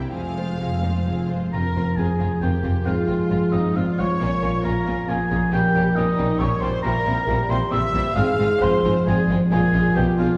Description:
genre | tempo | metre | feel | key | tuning
classical, dramatic, fast romantic movement for symphony orchestra | 136 BPM | 3/4 | rubato | F minor | A4 = 441 Hz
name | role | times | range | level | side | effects
warm symphonic violin section | second line | 0.0-10.3 s | G3 to C5 | -34 LUFS | equal | none
rich symphonic viola section | accompaniment | 0.0-10.4 s | F3 to F5 | -31 LUFS | equal | none
concert harp | arpeggios | 0.0-10.4 s | Ab2 to Ab4 | -26 LUFS | equal | none
rich symphonic cello section | bass | 0.0-10.3 s | F2 to C3 | -30 LUFS | equal | none
rich symphonic double bass section | bass | 0.0-10.3 s | F1 to B1 | -30 LUFS | equal | none
rich studio violin section | melody | 0.1-10.3 s | D4 to F5 | -39 LUFS | equal | none
mellow oboe | second line | 1.5-10.4 s | Eb5 to E6 | -29 LUFS | equal | none
timpani | percussion | 1.5-2.2 s | F2 | -33 LUFS | equal | none
mellow French horn section | sustained chords | 2.0-10.4 s | F4 to C5 | -29 LUFS | equal | none
room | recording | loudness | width
wet recital hall reverb, RT60 1.7 s | recorded in a church or concert hall | -21 LUFS | mono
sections
0.0-1.5 A section; 1.5-10.4 A section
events
none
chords
0.1 Fm; 2.9 Fm/Ab; 4.2 Bbm; 5.5 Gdim/Bb; 6.8 C7/Bb; 8.2 Fm/Ab; 9.5 Bbm7

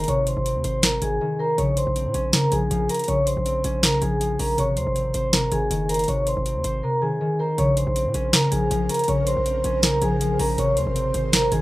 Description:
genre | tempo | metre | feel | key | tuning
hip hop, trap | 160 BPM | 4/4 | half-time | Bb minor | A4 = 442 Hz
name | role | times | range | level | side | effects
vibraphone with medium mallets | melody | 0.0-11.6 s | Ab4 to Db6 | -23 LUFS | equal | low-pass filter, plate reverb
concert harp | accompaniment | 0.0-11.6 s | C3 to C5 | -26 LUFS | left 1 dB | low-pass filter
hard-hitting 808-style bass | bass | 0.0-11.6 s | Gb1 to Bb2 | -27 LUFS | equal | none
booming analog drum machine | drums | 0.0-11.6 s | hi-hat, snare drum | -23 LUFS | equal | none
ethereal airy pad | sustained chords | 8.2-11.6 s | Db3 to C5 | -32 LUFS | right 2 dB | ensemble chorus, built-in reverb, plate reverb
room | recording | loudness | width
light reverb | rough home demo mix | -20 LUFS | side -18 dB against mid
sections
0.0-7.6 A section; 7.6-11.6 B section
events
break 1.2-1.6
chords
0.0 Ab; 1.6 Bbmadd9; 4.6 Ab; 7.6 Bbmadd9; 10.6 Ab

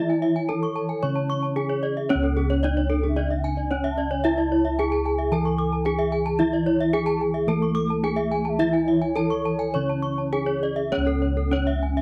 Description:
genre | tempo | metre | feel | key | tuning
Balinese gamelan | 100-112 BPM | 4/4 | straight | C# pelog | A4 = 440 Hz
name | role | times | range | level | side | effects
gamelan-type bronze metallophone | melody | 0.0-12.0 s | C#4 to C#5 | -27 LUFS | equal | none
mellow hollow bansuri | second line | 0.0-10.4 s | C#5 to A5 | -36 LUFS | equal | none
gamelan-type bronze metallophone | accompaniment | 0.0-2.1, 6.4-10.9 s | E3 to C#4 | -34 LUFS | equal | none
gamelan-type bronze metallophone | arpeggios | 0.0-12.0 s | A4 to C#6 | -34 LUFS | equal | none
gamelan-type bossed gongs | bass | 0.0-12.0 s | C#2 to E4 | -28 LUFS | equal | none
gamelan-type bronze metallophone | arpeggios | 0.2-12.0 s | G#4 to D6+35c | -34 LUFS | equal | none
room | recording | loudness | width
little or no reverb | dark, warm production | -24 LUFS | mono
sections
0.0-2.1 A section; 2.1-10.9 A section; 10.9-12.0 B section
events
none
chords
none

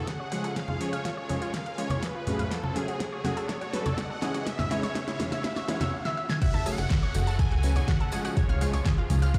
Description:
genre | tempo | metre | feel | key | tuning
progressive house | 123 BPM | 4/4 | straight | F# minor | A4 = 439 Hz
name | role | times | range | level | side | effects
unison lead | melody | 0.0-8.8 s | G#4 to G#5 | -40 LUFS | equal | sidechain pumping, delay
clear studio string section | sustained chords | 0.0-9.4 s | C#3 to G#4 | -42 LUFS | equal | sidechain pumping
riser and downlifter | sound effects | 0.1-9.4 s | none | -45 LUFS | equal | none
electronic kick drum | drums | 0.1-9.4 s | none | -29 LUFS | equal | high-pass filter on kick
pop drum kit | drums | 0.1-9.4 s | hi-hat, snare drum | -37 LUFS | equal | sidechain pumping on hats
analog pluck | arpeggios | 0.2-9.4 s | E4 to E#6 | -39 LUFS | equal | chorus, sidechain pumping, delay
supersaw stab | stabs | 0.3-9.2 s | E3 to C#5 | -37 LUFS | equal | sidechain pumping, delay
congas | percussion | 0.7-9.2 s | none | -35 LUFS | equal | sidechain pumping on perc
glassy wavetable pluck | second line | 6.4-8.8 s | C#5 to G#5 | -47 LUFS | equal | none
plucky analog bass | bass | 6.4-9.4 s | F#1 to C#2 | -29 LUFS | equal | sidechain pumping
tambourine | percussion | 6.4-9.4 s | none | -48 LUFS | equal | none
room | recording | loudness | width
light reverb | played on a big sound system in a bare room, large studio reverb | -29 LUFS | mono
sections
0.0-6.4 A section; 6.4-9.4 B section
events
build-up 0.0-6.4; drum fill 0.0-5.9, 6.1-6.4; filter sweep on synth arpeggio sound 0.0-6.4; drop 6.4-9.4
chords
0.0 F#madd9; 4.5 C#m; 6.4 F#madd9; 8.4 C#

